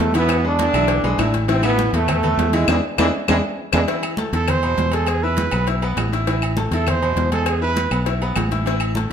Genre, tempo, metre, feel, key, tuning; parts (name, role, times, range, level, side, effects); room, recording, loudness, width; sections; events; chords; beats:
latin, salsa; 201 BPM; 4/4; straight; A harmonic minor; A4 = 439 Hz
bright trombone section; melody; 0.0-3.8 s; G#2 to D4; -21 LUFS; right 2 dB
bright baby grand piano; accompaniment; 0.0-9.1 s; B2 to E6; -24 LUFS; left 1 dB
fingered electric bass; bass; 0.0-9.1 s; A1 to E2; -21 LUFS; equal
congas; percussion; 0.0-9.1 s; -29 LUFS; equal
cowbell; percussion; 0.0-9.1 s; -29 LUFS; left 8 dB
timbales and agogo bells; percussion; 0.0-9.1 s; -28 LUFS; right 5 dB
claves; percussion; 0.3-9.0 s; -28 LUFS; left 8 dB
mellow trumpet; melody; 4.3-8.0 s; G#4 to C5; -23 LUFS; right 5 dB
moderate large studio reverb, RT60 1.4 s; minimal, uncompressed stereo recording; -17 LUFS; side -8 dB against mid
0.0-3.9 A section; 3.9-9.1 B section
band accent 2.7-3.9; drum fill 3.1-3.9; trumpet solo 3.9-9.1
0.3 E7; 1.5 Amadd9; 2.7 E7; 3.9 Amadd9; 5.1 E; 6.3 Amadd9; 7.5 Asus2
0.00 | 0.30 0.60 0.90 1.19 | 1.49 1.79 2.09 2.39 | 2.68 2.98 3.28 3.58 | 3.88 4.18 4.48 4.77 | 5.07 5.37 5.67 5.97 | 6.27 6.57 6.87 7.17 | 7.46 7.76 8.06 8.36 | 8.66 8.96